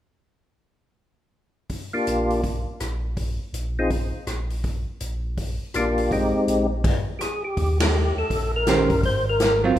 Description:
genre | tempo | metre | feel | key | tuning
soul jazz organ trio | 164 BPM | 4/4 | swing 63% on 8ths | unclear | A4 = 439 Hz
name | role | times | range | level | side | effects
swinging big-band drum kit | drums | 1.7-9.8 s | crash cymbal, hi-hat, kick drum, ride cymbal, rim click, snare drum | -26 LUFS | equal | none
percussive tonewheel organ | melody | 1.9-9.6 s | Ab3 to C5 | -23 LUFS | left 1 dB | slow rotary speaker, chorus vibrato
mellow tonewheel organ | bass | 2.1-9.8 s | Ab1 to Eb2 | -27 LUFS | equal | chorus vibrato, slow rotary speaker
archtop guitar, miked and amplified | accompaniment | 8.7-9.8 s | Eb3 to C5 | -21 LUFS | right 4 dB | none
room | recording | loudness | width
moderate recital hall reverb, RT60 1.6 s | recorded in a church or concert hall | -21 LUFS | side -12 dB against mid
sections
1.7-7.6 A section; 7.6-9.8 B section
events
stop 6.8-7.6; band accent 7.8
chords
1.7 Bb6; 6.8 N.C.; 7.6 Eb6; 9.0 Ab13

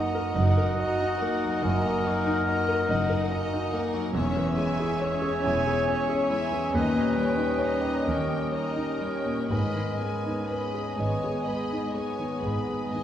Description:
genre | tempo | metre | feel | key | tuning
classical, romantic movement for piano and orchestra | 40-49 BPM (dotted quarters) | 12/8 | rubato | unclear | A4 = 440 Hz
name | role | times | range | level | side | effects
clear grand piano | melody | 0.0-13.0 s | D#2 to G#5 | -29 LUFS | left 1 dB | none
rich studio violin section | melody | 0.0-13.0 s | E5 to B5 | -42 LUFS | left 2 dB | none
mellow clarinet | second line | 0.0-13.0 s | F#4 to C#5 | -32 LUFS | equal | none
mellow hollow silver concert flute | second line | 0.0-13.0 s | F#5 to G#5 | -36 LUFS | right 1 dB | none
rich studio violin section | second line | 0.0-13.0 s | A#4 to E5 | -38 LUFS | left 3 dB | none
warm oboe | second line | 0.0-13.0 s | D#5 to E5 | -38 LUFS | equal | none
clear studio viola section | accompaniment | 0.0-13.0 s | G#3 to F#4 | -38 LUFS | right 2 dB | none
mellow bassoon | accompaniment | 0.0-13.0 s | B3 to D#4 | -36 LUFS | equal | none
mellow French horn section | sustained chords | 0.0-13.0 s | G3 to D#4 | -34 LUFS | left 2 dB | none
dark studio cello section | bass | 0.0-13.0 s | D#2 to G#2 | -34 LUFS | right 2 dB | none
rich studio double bass section | bass | 0.0-13.0 s | E1 to D#2 | -32 LUFS | right 2 dB | none
room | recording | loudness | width
wet scoring stage reverb, RT60 1.5 s | heard from further back in the room | -24 LUFS | side -10 dB against mid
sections
0.0-13.0 A section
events
none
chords
0.0 D#m/F#; 4.1 C#m/E; 6.7 D#7; 9.5 G#m

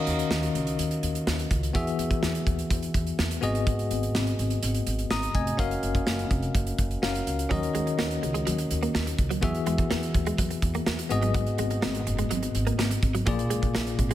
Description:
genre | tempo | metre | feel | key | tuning
1980s-style pop | 125 BPM | 4/4 | straight | unclear | A4 = 439 Hz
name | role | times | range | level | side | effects
bell-like tine electric piano | accompaniment | 0.0-14.1 s | Ab2 to Eb6 | -28 LUFS | left 2 dB | medium stereo tremolo
upright bass | bass | 0.1-14.1 s | F1 to E2 | -31 LUFS | equal | none
modern studio drum kit | drums | 0.1-14.1 s | hi-hat, kick drum, snare drum | -29 LUFS | right 1 dB | none
direct-recorded clean electric guitar | riff | 7.5-14.1 s | F3 to Bb3 | -33 LUFS | right 4 dB | analog chorus, tape echo
room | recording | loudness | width
light reverb, small room ambience | none | -24 LUFS | side -13 dB against mid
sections
0.0-14.1 A section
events
none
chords
0.0 Ebm7; 1.7 Eadd9; 3.4 Abm7; 5.6 Gbmaj7; 7.5 Ebm7; 9.4 Eadd9; 11.1 Abm7; 13.3 Bb7

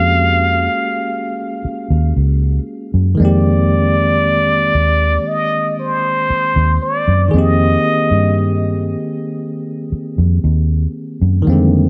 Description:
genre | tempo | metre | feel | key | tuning
contemporary R&B | 58 BPM | 4/4 | straight | unclear | A4 = 441 Hz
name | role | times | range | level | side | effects
trumpet with plunger mute | melody | 0.0-8.9 s | C5 to F5 | -19 LUFS | equal | none
bell-like tine electric piano | accompaniment | 0.0-11.9 s | D3 to Ab4 | -21 LUFS | equal | none
vintage muted fingered electric bass | bass | 0.0-11.9 s | Db2 to G2 | -17 LUFS | equal | none
room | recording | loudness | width
light reverb, studio reverb | none | -16 LUFS | mono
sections
0.0-11.9 A section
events
none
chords
0.0 Ebm11 (rootless); 3.2 Fm11

